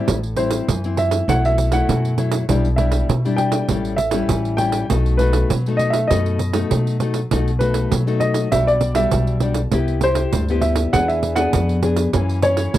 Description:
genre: samba and choro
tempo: 100 BPM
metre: 4/4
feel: straight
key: unclear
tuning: A4 = 440 Hz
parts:
  - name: nylon-string guitar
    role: accompaniment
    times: 0.0-12.8 s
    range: F#2 to G#4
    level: -23 LUFS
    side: left 4 dB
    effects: none
  - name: upright bass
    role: bass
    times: 0.1-12.8 s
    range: A1 to B2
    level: -20 LUFS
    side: equal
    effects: none
  - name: pandeiro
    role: percussion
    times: 0.1-12.8 s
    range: none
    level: -22 LUFS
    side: right 6 dB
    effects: none
  - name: dark baby grand piano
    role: melody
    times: 0.4-12.8 s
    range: B4 to G5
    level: -21 LUFS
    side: equal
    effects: none
room: light reverb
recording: dry, close 1970s-style studio recording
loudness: -16 LUFS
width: side -13 dB against mid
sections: 0.0-12.8 A section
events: none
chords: 0.1 Am7; 1.3 B7sus4; 2.5 Em7/B; 3.7 A7; 4.9 B7; 8.5 Gmaj7/B; 9.7 Cmaj7; 10.9 E7; 12.1 F#7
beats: | 0.08 0.68 1.29 1.89 | 2.49 3.10 3.70 4.30 | 4.91 5.51 6.11 6.71 | 7.32 7.92 8.53 9.13 | 9.73 10.33 10.94 11.54 | 12.14 12.75

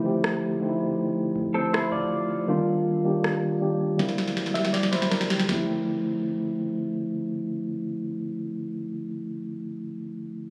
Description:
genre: contemporary R&B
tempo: 80 BPM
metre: 4/4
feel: straight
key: D minor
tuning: A4 = 440 Hz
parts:
  - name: mellow tine electric piano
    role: accompaniment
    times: 0.0-10.5 s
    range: D3 to G4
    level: -28 LUFS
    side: equal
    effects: low-pass filter
  - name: booming analog drum machine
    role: drums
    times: 0.2-5.7 s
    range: kick drum, rim click, snare drum, toms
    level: -30 LUFS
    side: equal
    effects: none
  - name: direct-recorded clean electric guitar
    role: arpeggios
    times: 1.5-5.7 s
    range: Bb3 to E5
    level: -32 LUFS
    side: equal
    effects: spring reverb, low-pass filter, delay
room: light reverb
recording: recorded on a phone in the room, studio reverb, compression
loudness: -27 LUFS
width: mono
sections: 0.0-5.5 A section; 5.5-8.5 B section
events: drum fill 4.0-5.5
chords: 0.0 Dm9; 2.5 Ebmaj9; 4.0 C9; 5.5 Dm9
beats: 0.23 0.98 1.73 | 2.48 3.23 3.98 4.73 | 5.48 6.23 6.98 7.73

